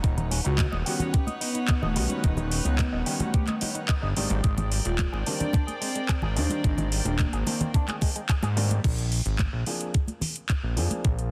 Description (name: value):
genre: nu-disco, nu disco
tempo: 109 BPM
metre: 4/4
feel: straight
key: unclear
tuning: A4 = 439 Hz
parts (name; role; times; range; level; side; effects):
- rich chamber string section; sustained chords; 0.0-8.8 s; Eb4 to G5; -40 LUFS; equal; sidechain pumping
- electric guitar with an envelope filter; riff; 0.0-8.8 s; G3 to Eb5; -39 LUFS; equal; subtle chorus, tape echo
- fat analog bass; bass; 0.0-11.3 s; Eb1 to Ab2; -29 LUFS; equal; none
- electronic kick drum; drums; 0.0-11.2 s; none; -27 LUFS; equal; overdrive
- house drum kit; drums; 0.0-11.3 s; crash cymbal, handclaps, hi-hat; -34 LUFS; equal; none
- congas; percussion; 0.2-11.0 s; none; -35 LUFS; equal; none
- vibraphone with soft mallets; melody; 0.5-7.6 s; A3 to F#4; -36 LUFS; equal; analog delay
- clear grand piano; accompaniment; 0.9-11.3 s; Eb3 to Ab4; -37 LUFS; equal; sidechain pumping, low-pass filter, tape echo
room: light reverb, small room ambience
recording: dense, heavily limited modern master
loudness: -26 LUFS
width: mono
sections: 0.0-8.8 A section; 8.8-11.3 B section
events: drop 0.0-8.8; filter sweep on grand piano 8.8-11.3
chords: 0.0 Eb7alt; 4.2 Abmaj9#11; 8.8 Bb9